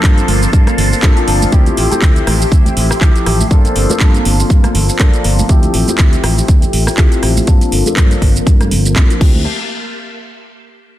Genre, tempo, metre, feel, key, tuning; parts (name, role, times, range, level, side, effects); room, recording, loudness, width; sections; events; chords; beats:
filtered disco house; 121 BPM; 4/4; swing 56% on 16ths; D minor; A4 = 440 Hz
clear grand piano; accompaniment; 0.0-9.4 s; F3 to A4; -19 LUFS; left 3 dB; phaser, vintage 12-bit sampler grit, sidechain pumping, low-pass filter
phased string machine; sustained chords; 0.0-9.4 s; Bb3 to C6; -23 LUFS; equal; ensemble chorus, phaser, sidechain pumping, low-pass filter
direct-recorded clean electric guitar; riff; 0.0-9.4 s; F3 to A4; -24 LUFS; right 1 dB; lush chorus, sidechain pumping, low-pass filter
modern bright fingered electric bass; bass; 0.0-9.4 s; G1 to G2; -16 LUFS; equal; sidechain pumping, low-pass filter
electronic kick drum; drums; 0.0-9.3 s; -10 LUFS; equal
house drum kit; drums; 0.0-9.3 s; crash cymbal, handclaps, hi-hat, rim click, shaker; -19 LUFS; right 1 dB; sidechain pumping on hats, sidechain pumping on perc, sidechain pumping on cymbals
tambourine and congas; percussion; 0.0-9.4 s; -25 LUFS; right 3 dB
digital ambience; dense, heavily limited modern master; -9 LUFS; side -14 dB against mid
0.0-9.5 A section; 9.5-11.0 B section
filter sweep 0.0-9.5
0.0 Gm11; 1.5 Dm11; 3.5 Gm11; 5.5 Dm11; 7.5 Gm11; 9.2 Dm11; 9.5 N.C.
0.04 0.53 1.03 | 1.53 2.02 2.52 3.01 | 3.51 4.00 4.50 5.00 | 5.49 5.99 6.49 6.98 | 7.48 7.97 8.47 8.96